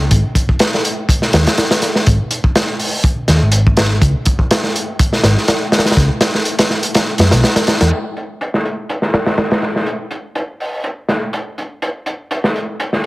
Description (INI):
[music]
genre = breakbeat, breaks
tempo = 123 BPM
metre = 4/4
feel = swing 54% on 16ths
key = unclear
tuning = A4 = 439 Hz
[part]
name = hollow-body short-scale picked electric bass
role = bass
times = 0.0-7.9 s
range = G#1 to F#2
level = -12 LUFS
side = equal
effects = none
[part]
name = crunchy breakbeat drum kit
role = drums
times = 0.1-13.1 s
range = hi-hat, kick drum, snare drum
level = -14 LUFS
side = equal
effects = low-pass filter on kick, low-pass filter on hats, low-pass filter on snare, low-pass filter on room
[sound]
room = light reverb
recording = heavily compressed radio sound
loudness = -13 LUFS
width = side -19 dB against mid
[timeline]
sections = 0.0-7.9 A section; 7.9-13.1 B section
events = none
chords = none